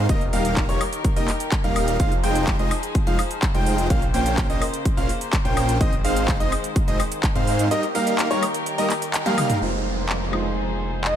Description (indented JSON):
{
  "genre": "EDM, festival progressive house",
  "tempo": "126 BPM",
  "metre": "4/4",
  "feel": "straight",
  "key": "F minor",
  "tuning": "A4 = 440 Hz",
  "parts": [
    { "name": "warm studio string section", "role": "sustained chords", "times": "0.0-11.2 s", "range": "Db3 to C5", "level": "-31 LUFS", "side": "left 2 dB", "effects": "sidechain pumping" },
    { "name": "clear baby grand piano", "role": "arpeggios", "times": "0.0-9.6 s", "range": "Db5 to G5", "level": "-28 LUFS", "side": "right 1 dB", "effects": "sidechain pumping, tape echo" },
    { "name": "big supersaw lead", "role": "riff", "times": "0.0-9.6 s", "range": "G3 to G5", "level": "-26 LUFS", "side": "equal", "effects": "sidechain pumping, tape echo" },
    { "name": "wide detuned saw bass", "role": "bass", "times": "0.0-11.2 s", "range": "Eb1 to Ab2", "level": "-26 LUFS", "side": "equal", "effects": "chorus, sidechain pumping" },
    { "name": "big-room dance drum kit", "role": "drums", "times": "0.1-11.1 s", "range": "handclaps, hi-hat, shaker, toms, woodblock", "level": "-28 LUFS", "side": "left 1 dB", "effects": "none" },
    { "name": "electronic kick drum", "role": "drums", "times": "0.1-7.3 s", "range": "none", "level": "-22 LUFS", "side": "equal", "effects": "none" },
    { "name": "felt-muted upright piano", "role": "accompaniment", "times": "9.6-11.2 s", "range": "Ab3 to F4", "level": "-29 LUFS", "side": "right 3 dB", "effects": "sidechain pumping, tape echo" },
    { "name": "downlifter", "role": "sound effects", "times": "9.6-11.2 s", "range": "none", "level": "-31 LUFS", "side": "right 2 dB", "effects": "none" },
    { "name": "breathy flute-like synth lead", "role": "melody", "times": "11.0-11.2 s", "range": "Eb5", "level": "-22 LUFS", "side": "equal", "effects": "lush chorus" }
  ],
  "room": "light reverb, digital ambience",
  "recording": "none",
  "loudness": "-19 LUFS",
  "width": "side -10 dB against mid",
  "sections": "0.0-9.6 A section; 9.6-11.2 B section",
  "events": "drop 0.0-9.6; band accent 9.1; drum fill 9.3-9.6",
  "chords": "0.1 Eb; 2.0 Fm7; 3.9 Bbmadd9; 5.8 Ab; 7.7 Eb; 9.6 Fm7"
}